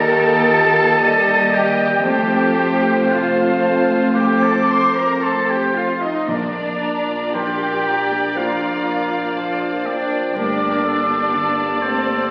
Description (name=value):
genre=cinematic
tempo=55-62 BPM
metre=4/4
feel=rubato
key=Bb major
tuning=A4 = 444 Hz
part: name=warm symphonic violin section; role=melody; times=0.0-12.3 s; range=Bb4 to Eb5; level=-29 LUFS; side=equal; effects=none
part: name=clear oboe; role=second line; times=0.0-12.3 s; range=C5 to C6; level=-24 LUFS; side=equal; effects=none
part: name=silver concert flute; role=second line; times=0.0-12.3 s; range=G5 to D6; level=-28 LUFS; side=equal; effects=none
part: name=warm clarinet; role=second line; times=0.0-12.3 s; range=A4 to Eb5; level=-27 LUFS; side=equal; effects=none
part: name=warm symphonic violin section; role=second line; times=0.0-12.3 s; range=C5 to C6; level=-31 LUFS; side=equal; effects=none
part: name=dark concert grand piano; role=accompaniment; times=0.0-12.3 s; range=Eb2 to D5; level=-32 LUFS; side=equal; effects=none
part: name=rich symphonic viola section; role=accompaniment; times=0.0-12.3 s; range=Eb3 to G4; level=-28 LUFS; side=equal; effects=none
part: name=mellow French horn section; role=sustained chords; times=0.0-12.3 s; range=Bb3 to Bb4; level=-26 LUFS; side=equal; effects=none
part: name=rich symphonic cello section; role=bass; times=0.0-12.3 s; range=C4 to C5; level=-25 LUFS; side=equal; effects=none
part: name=rich symphonic double bass section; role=bass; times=0.0-12.3 s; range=G1 to F2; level=-33 LUFS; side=equal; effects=none
part: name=timpani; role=percussion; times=6.3-7.8 s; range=Bb2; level=-34 LUFS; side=equal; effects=none
room=wet scoring stage reverb, RT60 1.5 s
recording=very old 78 rpm record, vinyl crackle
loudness=-18 LUFS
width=mono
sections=0.0-12.3 A section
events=none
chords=0.0 Eb; 2.1 F; 6.3 Bb; 10.4 Gmadd9